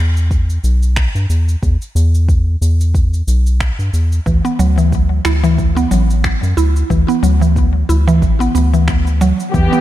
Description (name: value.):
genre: organic downtempo.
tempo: 91 BPM.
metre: 4/4.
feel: swing 56% on 16ths.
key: unclear.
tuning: A4 = 440 Hz.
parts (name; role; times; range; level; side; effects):
round analog bass; bass; 0.0-9.7 s; A1 to G2; -13 LUFS; equal; none.
electronic shaker and finger snaps; drums; 0.2-9.8 s; none; -26 LUFS; equal; none.
electronic kick drum; drums; 0.3-9.7 s; none; -17 LUFS; equal; none.
mallet-like synth pluck; arpeggios; 4.3-9.8 s; E3 to E4; -16 LUFS; right 1 dB; chorus, ping-pong delay.
dark studio string section; sustained chords; 9.5-9.8 s; E3 to G4; -14 LUFS; equal; sidechain pumping.
room: light reverb.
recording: none.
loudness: -12 LUFS.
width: side -14 dB against mid.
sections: 0.0-9.8 A section.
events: none.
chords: 0.0 E5; 4.3 D6.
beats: 0.31 0.97 | 1.63 2.29 2.95 3.60 | 4.26 4.92 5.58 6.24 | 6.90 7.56 8.22 8.88 | 9.54.